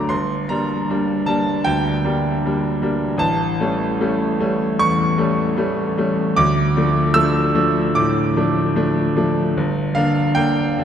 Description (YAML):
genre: classical, romantic character piece for solo piano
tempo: 76 BPM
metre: 4/4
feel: rubato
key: D minor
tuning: A4 = 441 Hz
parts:
  - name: bright grand piano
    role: solo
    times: 0.0-10.8 s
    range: G1 to E6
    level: -16 LUFS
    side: equal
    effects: none
room: wet concert hall reverb, RT60 2.2 s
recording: none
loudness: -16 LUFS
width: side -8 dB against mid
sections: 0.0-10.8 A section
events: none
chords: 0.1 Gm; 3.2 A7; 6.4 Dm; 9.5 Gm